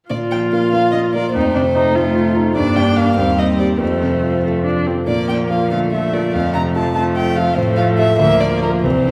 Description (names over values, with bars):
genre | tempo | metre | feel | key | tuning
quick classical-period movement for piano quintet | 96 BPM (dotted quarters) | 6/8 | rubato | Bb major | A4 = 439 Hz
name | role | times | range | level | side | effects
dark violin | melody | 0.1-9.1 s | Bb4 to Bb5 | -22 LUFS | equal | none
clear cello | second line | 0.1-9.1 s | D3 to Bb3 | -24 LUFS | equal | none
clear grand piano | accompaniment | 0.1-9.1 s | C2 to C5 | -20 LUFS | equal | none
warm viola | accompaniment | 0.1-9.1 s | A3 to F4 | -23 LUFS | equal | none
room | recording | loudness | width
wet recital hall reverb, RT60 1.6 s | recorded in a church or concert hall | -16 LUFS | mono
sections
0.1-9.1 A section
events
none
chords
0.1 Bb5; 1.4 F7; 2.6 Gm; 3.2 Cm/Eb; 3.8 F; 5.1 Bb; 6.3 F; 7.6 F/A; 8.2 Bb/D